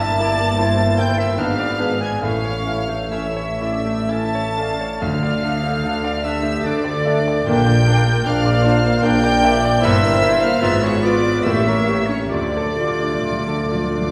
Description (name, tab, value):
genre	classical, romantic movement for piano and orchestra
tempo	57-79 BPM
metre	3/4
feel	rubato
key	D minor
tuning	A4 = 443 Hz
part	clear concert grand piano	melody	0.0-14.1 s	D2 to E5	-23 LUFS	equal	none
part	warm studio violin section	melody	0.0-14.1 s	C#6 to A6	-32 LUFS	equal	none
part	bright silver concert flute	second line	0.0-14.1 s	C#5 to A5	-29 LUFS	equal	none
part	rich studio violin section	second line	0.0-14.1 s	C#5 to A5	-31 LUFS	equal	none
part	warm oboe	second line	0.0-14.1 s	C#5 to A5	-30 LUFS	equal	none
part	dark studio viola section	accompaniment	0.0-14.1 s	G4 to F5	-31 LUFS	equal	none
part	dark French horn section	sustained chords	0.0-14.1 s	A3 to G4	-30 LUFS	equal	none
part	warm studio cello section	bass	0.0-14.1 s	G2 to D3	-29 LUFS	equal	none
part	warm symphonic double bass section	bass	0.0-14.1 s	G1 to D2	-28 LUFS	equal	none
part	warm tuba	bass	0.0-14.1 s	G1 to D2	-31 LUFS	equal	none
part	warm clarinet	second line	0.2-13.9 s	C#4 to G4	-33 LUFS	equal	none
part	dark bassoon	accompaniment	0.2-13.8 s	A3 to B3	-31 LUFS	equal	none
part	timpani	percussion	5.0-6.2, 12.3-14.1 s	D3	-30 LUFS	equal	none
room	wet scoring stage reverb, RT60 1.9 s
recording	heard from further back in the room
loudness	-18 LUFS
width	mono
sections	0.0-14.1 A section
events	timpani fill 12.3-14.1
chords	0.0 Edim/G; 1.4 G#dim7; 2.2 A; 5.0 Dm; 7.5 Bb; 9.8 Edim/G; 10.6 G#dim7; 11.4 A7b9; 12.3 Dm